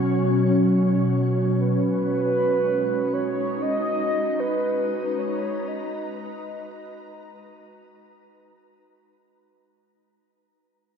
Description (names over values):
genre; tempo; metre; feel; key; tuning
ambient; free time; none; none; unclear; A4 = 440 Hz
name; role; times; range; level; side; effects
ethereal airy pad; sustained chords; 0.0-9.9 s; B2 to A#5; -24 LUFS; equal; ensemble chorus, built-in reverb, shimmer reverb
glass harmonica; texture; 0.0-9.9 s; F#4; -32 LUFS; right 2 dB; stereo widening, shimmer reverb
warm velvety synth lead; melody; 1.6-8.8 s; B4 to D#5; -26 LUFS; right 1 dB; chorus, shimmer reverb, tape echo
room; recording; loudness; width
wet lush hall reverb, RT60 2.9 s; dark, warm production; -21 LUFS; side -7 dB against mid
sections
0.0-9.9 A section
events
fade-out 0.0-9.9; filter sweep on ambient pad 0.0-9.9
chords
0.0 Bsus2; 1.6 G#m7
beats
free time